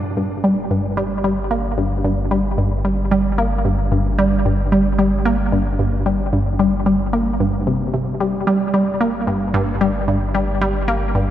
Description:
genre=ambient, sequencer-driven space music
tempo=112 BPM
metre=4/4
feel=straight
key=G minor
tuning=A4 = 440 Hz
part: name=resonant blip pluck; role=riff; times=0.0-11.3 s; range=G2 to Bb3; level=-17 LUFS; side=equal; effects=chorus, analog delay
part: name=round analog bass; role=bass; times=0.0-11.3 s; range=G1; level=-23 LUFS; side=equal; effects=none
room=wet cathedral reverb, RT60 4.8 s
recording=in a vast, echoing space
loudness=-16 LUFS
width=side -11 dB against mid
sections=0.0-11.3 A section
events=none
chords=0.0 Gm

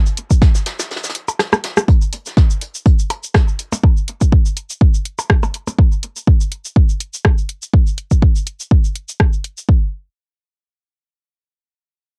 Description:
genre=techno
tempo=123 BPM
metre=4/4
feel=swing 55% on 16ths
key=none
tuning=none
part: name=house drum kit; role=drums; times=0.1-9.7 s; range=hi-hat, rim click, shaker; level=-23 LUFS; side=equal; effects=overdrive, cassette tape
part: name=soft brush drum kit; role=drums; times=0.1-3.7 s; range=hi-hat, snare drum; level=-30 LUFS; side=equal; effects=sidechain pumping on hats, high-pass filter on hats, cassette tape, high-pass filter on snare, high-pass filter on room
part: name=electronic kick drum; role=drums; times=0.3-9.8 s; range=none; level=-14 LUFS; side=equal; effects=overdrive, cassette tape
part: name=percussion blips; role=percussion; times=1.3-5.8 s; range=none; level=-24 LUFS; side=equal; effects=cassette tape, tape echo
room=little or no reverb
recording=home recording on cassette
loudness=-16 LUFS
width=mono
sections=0.0-1.9 A section; 1.9-9.7 B section; 9.7-12.2 C section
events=drop 0.0-1.9; break 0.9-1.9; drum fill 1.4-1.9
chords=none

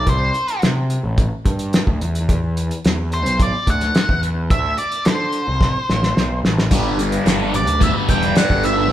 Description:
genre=psychedelic rock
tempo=108 BPM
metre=4/4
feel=straight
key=unclear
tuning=A4 = 440 Hz
part: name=octave-fuzz lead guitar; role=melody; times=0.0-8.9 s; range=C5 to G5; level=-21 LUFS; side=equal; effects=distortion
part: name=fuzz picked electric bass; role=bass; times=0.0-8.9 s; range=E1 to D3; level=-21 LUFS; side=equal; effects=overdrive
part: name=cloth-damped thuddy drum kit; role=drums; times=0.1-8.8 s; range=hi-hat, kick drum, snare drum, splash cymbal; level=-19 LUFS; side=equal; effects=none
part: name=hand-pumped harmonium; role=sustained chords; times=6.7-8.9 s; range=G3 to B4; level=-27 LUFS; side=right 7 dB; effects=none
part: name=thick fuzz guitar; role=riff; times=6.7-8.9 s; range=G2 to G3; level=-19 LUFS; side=left 1 dB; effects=distortion, phaser
part: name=maracas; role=percussion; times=6.7-8.8 s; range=none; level=-35 LUFS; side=left 5 dB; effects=none
room=moderate large studio reverb, RT60 1.2 s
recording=band playing live in one room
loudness=-16 LUFS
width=side -12 dB against mid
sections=0.0-8.9 A section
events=drum fill 5.6-6.7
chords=0.1 C5; 2.0 E5; 4.5 D5; 6.7 G

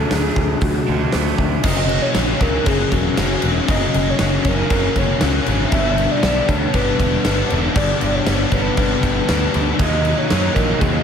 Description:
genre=rock, shoegaze and dream pop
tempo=118 BPM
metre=4/4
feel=straight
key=unclear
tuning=A4 = 440 Hz
part: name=pure sine lead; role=melody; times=0.0-11.0 s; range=F#4 to E5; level=-23 LUFS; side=right 2 dB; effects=chorus, analog delay
part: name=overdriven electric guitar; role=riff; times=0.0-11.0 s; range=F#2 to D#4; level=-22 LUFS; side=left 9 dB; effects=ensemble chorus
part: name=overdriven electric guitar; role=riff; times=0.0-1.6, 9.8-11.0 s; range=D3 to D#4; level=-25 LUFS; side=right 10 dB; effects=reverse reverb
part: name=modern bright picked electric bass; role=bass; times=0.0-11.0 s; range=E1 to F#2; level=-22 LUFS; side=equal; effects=none
part: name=huge arena drum kit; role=drums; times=0.1-10.9 s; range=crash cymbal, hi-hat, kick drum, snare drum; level=-20 LUFS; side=equal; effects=none
part: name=sludgy distorted guitar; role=riff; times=1.6-11.0 s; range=F#2 to D#4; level=-23 LUFS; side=right 2 dB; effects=overdrive
room=moderate plate reverb, RT60 1.5 s, small room ambience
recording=dreamy mix soaked in reverb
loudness=-15 LUFS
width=side -7 dB against mid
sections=0.0-1.6 A section; 1.6-11.0 B section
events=none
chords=0.0 D; 1.6 F#; 5.7 G; 9.8 D#m

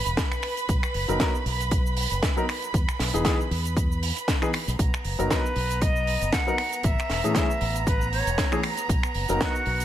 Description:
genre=nu-disco, nu disco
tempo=117 BPM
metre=4/4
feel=swing 56% on 16ths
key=B major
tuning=A4 = 440 Hz
part: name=warm chamber violin section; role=sustained chords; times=0.0-9.8 s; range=B3 to B5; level=-32 LUFS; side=right 3 dB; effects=sidechain pumping
part: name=fingered electric bass with an envelope filter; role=bass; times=0.1-9.8 s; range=E1 to A2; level=-28 LUFS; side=equal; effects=none
part: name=tight funk drum kit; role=drums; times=0.1-9.8 s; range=finger snaps, hi-hat, shaker, snare drum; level=-30 LUFS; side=right 1 dB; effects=none
part: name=electronic kick drum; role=drums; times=0.2-9.5 s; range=none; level=-26 LUFS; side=equal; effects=none
part: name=dark concert grand piano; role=accompaniment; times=1.1-9.5 s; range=E3 to A#4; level=-28 LUFS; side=left 2 dB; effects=ping-pong delay
part: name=breathy bright concert flute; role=melody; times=5.3-9.8 s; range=F#4 to F#5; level=-29 LUFS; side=left 1 dB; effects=digital delay
room=studio ambience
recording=none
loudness=-22 LUFS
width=side -11 dB against mid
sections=0.0-9.8 A section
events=none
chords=0.0 N.C.; 0.7 Bmaj7; 2.7 Emaj7; 4.8 Bmaj7; 6.6 A; 8.9 Bmaj7

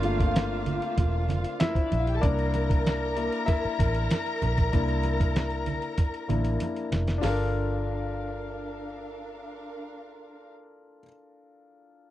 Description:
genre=lush 1970s-style soul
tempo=96 BPM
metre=4/4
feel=straight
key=G dorian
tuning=A4 = 439 Hz
part: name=warm studio string section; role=second line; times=0.0-10.5 s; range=Bb3 to Bb5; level=-34 LUFS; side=left 1 dB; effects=none
part: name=warm concert grand piano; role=accompaniment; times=0.0-12.1 s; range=A3 to E5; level=-32 LUFS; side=left 4 dB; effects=none
part: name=mellow horn section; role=stabs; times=0.0-1.9 s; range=D3 to F4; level=-35 LUFS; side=right 9 dB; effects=none
part: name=vintage muted fingered electric bass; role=bass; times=0.0-11.0 s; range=E1 to C2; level=-29 LUFS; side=equal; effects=none
part: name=dusty soul sampler-style drum kit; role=drums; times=0.0-7.4 s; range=hi-hat, kick drum, snare drum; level=-26 LUFS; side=right 1 dB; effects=none
part: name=congas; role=percussion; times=0.0-7.5 s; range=none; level=-35 LUFS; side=right 5 dB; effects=none
room=light reverb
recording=dry, close 1970s-style studio recording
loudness=-24 LUFS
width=side -14 dB against mid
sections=0.0-7.2 A section; 7.2-9.7 B section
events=grand piano solo 0.0-7.2; drum fill 6.0-7.2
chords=0.0 Gm7; 2.2 C7; 7.2 Gm7

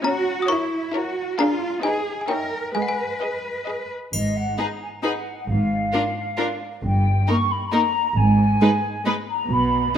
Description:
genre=cinematic, playful, whimsical film cue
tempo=134 BPM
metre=3/4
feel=straight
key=unclear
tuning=A4 = 440 Hz
part: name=trough xylophone with wooden mallets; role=melody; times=0.0-3.9 s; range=F#5 to D#6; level=-27 LUFS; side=left 3 dB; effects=none
part: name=rich symphonic viola section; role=accompaniment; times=0.0-10.0 s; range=G#3 to D#4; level=-25 LUFS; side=right 1 dB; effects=none
part: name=warm studio cello section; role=bass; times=0.0-9.9 s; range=G2 to B4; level=-24 LUFS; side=right 1 dB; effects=none
part: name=rich chamber violin section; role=melody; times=0.5-10.0 s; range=A#4 to E#5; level=-33 LUFS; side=left 3 dB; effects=none
part: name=rich chamber violin section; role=second line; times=0.5-10.0 s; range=D#4 to C#5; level=-30 LUFS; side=left 2 dB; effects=none
part: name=mellow hollow flute section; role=second line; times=4.1-10.0 s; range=D#5 to C#6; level=-24 LUFS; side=left 1 dB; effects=none
part: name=clear chamber double bass section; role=bass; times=4.1-9.9 s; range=G1 to B1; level=-25 LUFS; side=right 2 dB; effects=none
part: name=triangle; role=percussion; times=4.1-5.0 s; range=none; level=-33 LUFS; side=left 2 dB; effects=none
room=moderate scoring stage reverb, RT60 1.5 s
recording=none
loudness=-20 LUFS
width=side -9 dB against mid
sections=0.0-4.1 A section; 4.1-10.0 A section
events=none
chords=0.0 A#dim/C#; 1.4 A#7/D; 1.8 G#m/D#; 2.3 D#7b9; 2.7 G#m; 4.1 N.C.; 5.5 A#7(no3)/G# (rootless); 6.8 D#/G (rootless); 8.2 N.C.

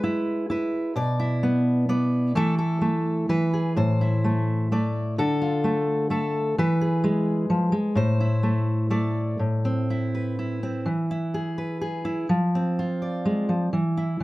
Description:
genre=folk, solo fingerstyle acoustic guitar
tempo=127 BPM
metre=3/4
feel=rubato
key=A harmonic minor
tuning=A4 = 441 Hz
part: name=fingerpicked steel-string acoustic guitar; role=solo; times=0.0-14.2 s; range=A2 to D5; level=-22 LUFS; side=equal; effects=none
room=moderate large studio reverb, RT60 1.2 s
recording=dark, warm production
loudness=-22 LUFS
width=side -18 dB against mid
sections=0.0-9.4 A section; 9.4-14.2 B section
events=none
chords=0.0 E/G#; 1.0 Bmadd11; 2.4 Esus4; 3.3 E; 3.8 Am; 5.2 Dmadd9; 6.6 E; 8.0 Am; 9.4 Amadd9; 10.9 E; 12.3 Dm7/F; 13.7 N.C.

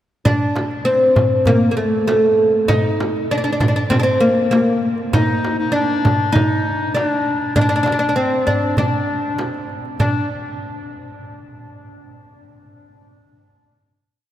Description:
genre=Arabic maqam ensemble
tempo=98 BPM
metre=4/4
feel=straight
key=D maqam hijaz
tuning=A4 = 437 Hz
part: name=oud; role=melody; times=0.3-10.3 s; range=A3 to Eb4+25c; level=-17 LUFS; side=equal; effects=none
part: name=darbuka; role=percussion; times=0.3-10.3 s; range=none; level=-25 LUFS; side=right 1 dB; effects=none
part: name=frame drum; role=percussion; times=0.3-10.3 s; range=none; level=-23 LUFS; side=right 2 dB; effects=none
part: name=clear clarinet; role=second line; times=5.1-10.3 s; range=C4 to Eb4+27c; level=-22 LUFS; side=left 3 dB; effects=none
room=wet cathedral reverb, RT60 6.3 s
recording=in a vast, echoing space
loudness=-15 LUFS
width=side -12 dB against mid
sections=0.3-10.0 A section; 10.0-12.4 final note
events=none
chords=none

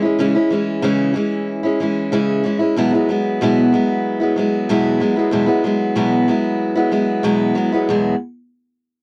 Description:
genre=rock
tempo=94 BPM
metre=4/4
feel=straight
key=E major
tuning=A4 = 438 Hz
part: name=picked steel-string acoustic guitar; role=solo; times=0.0-8.1 s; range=E2 to E4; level=-18 LUFS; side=equal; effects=none
room=light reverb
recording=dry, close 1970s-style studio recording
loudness=-18 LUFS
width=mono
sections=0.0-7.9 A section; 7.9-9.0 B section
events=none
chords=0.0 C#m; 2.8 Eadd9

